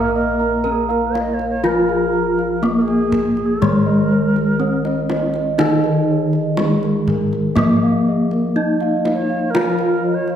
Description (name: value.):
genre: Javanese gamelan.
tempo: 61 BPM.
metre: 4/4.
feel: straight.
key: Bb slendro.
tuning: A4 = 440 Hz.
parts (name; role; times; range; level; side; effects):
gamelan-type bronze metallophone; melody; 0.0-10.4 s; Ab3-25c to Bb4; -19 LUFS; equal; none.
bright reedy low xiao; second line; 0.0-10.4 s; Ab4-21c to Eb5; -24 LUFS; right 2 dB; none.
gamelan-type bronze metallophone; accompaniment; 0.0-10.4 s; Eb3 to Bb3; -22 LUFS; left 2 dB; none.
gamelan-type bossed gongs; arpeggios; 0.0-10.3 s; Ab4-25c to Bb5; -27 LUFS; left 4 dB; none.
gamelan-type bronze metallophone; arpeggios; 0.0-10.4 s; Ab4-25c to Bb5; -25 LUFS; right 6 dB; none.
gamelan-type bossed gongs; bass; 0.0-10.4 s; Bb1 to F4; -24 LUFS; left 1 dB; none.
kendang; percussion; 0.4-10.4 s; none; -26 LUFS; right 2 dB; none.
room: wet scoring stage reverb, RT60 1.7 s.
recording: none.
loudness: -15 LUFS.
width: side -9 dB against mid.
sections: 0.0-10.4 A section.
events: none.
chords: none.